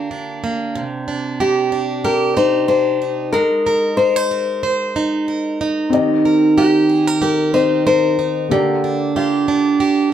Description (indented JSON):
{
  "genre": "acoustic pop",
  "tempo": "93 BPM",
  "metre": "4/4",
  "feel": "swing 55% on 16ths",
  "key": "Eb major",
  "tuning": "A4 = 436 Hz",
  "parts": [
    { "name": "nylon-string guitar", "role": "melody", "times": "0.0-10.1 s", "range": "F4 to C5", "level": "-18 LUFS", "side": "left 4 dB", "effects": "none" },
    { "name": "picked plugged-in steel-string acoustic guitar", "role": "accompaniment", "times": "0.0-10.1 s", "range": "C3 to C5", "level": "-17 LUFS", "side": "right 3 dB", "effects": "none" },
    { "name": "dark grand piano", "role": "accompaniment", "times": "5.9-10.1 s", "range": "D3 to Eb5", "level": "-22 LUFS", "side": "left 4 dB", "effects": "none" }
  ],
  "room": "light reverb",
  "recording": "band playing live in one room",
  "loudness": "-14 LUFS",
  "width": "side -10 dB against mid",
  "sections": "0.0-10.1 A section",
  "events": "none",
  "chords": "0.0 Bb6/D; 0.8 Cmadd9; 3.3 Abadd9; 5.9 Eb6; 8.5 Bb6/D"
}